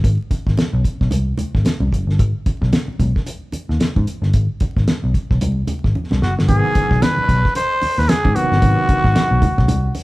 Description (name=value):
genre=funk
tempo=112 BPM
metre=4/4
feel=swing 60% on 16ths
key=unclear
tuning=A4 = 442 Hz
part: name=vintage muted picked electric bass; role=bass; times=0.0-9.9 s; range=Gb1 to Ab2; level=-18 LUFS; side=equal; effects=none
part: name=cloth-damped thuddy drum kit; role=drums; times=0.0-10.0 s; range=hi-hat, kick drum, snare drum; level=-19 LUFS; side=equal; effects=none
part: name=congas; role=percussion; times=0.3-10.0 s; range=none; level=-26 LUFS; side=right 1 dB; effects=none
part: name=growling trumpet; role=melody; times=6.2-10.0 s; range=Gb4 to C5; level=-18 LUFS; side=equal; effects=none
part: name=tine electric piano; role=stabs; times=6.5-9.5 s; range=C3 to B3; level=-23 LUFS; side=right 1 dB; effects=overdrive, fast stereo tremolo
room=moderate large studio reverb, RT60 1.2 s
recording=band playing live in one room, vinyl crackle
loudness=-15 LUFS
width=side -19 dB against mid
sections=0.0-6.5 A section; 6.5-10.0 B section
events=drum fill 5.9-6.5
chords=0.0 Ab7#9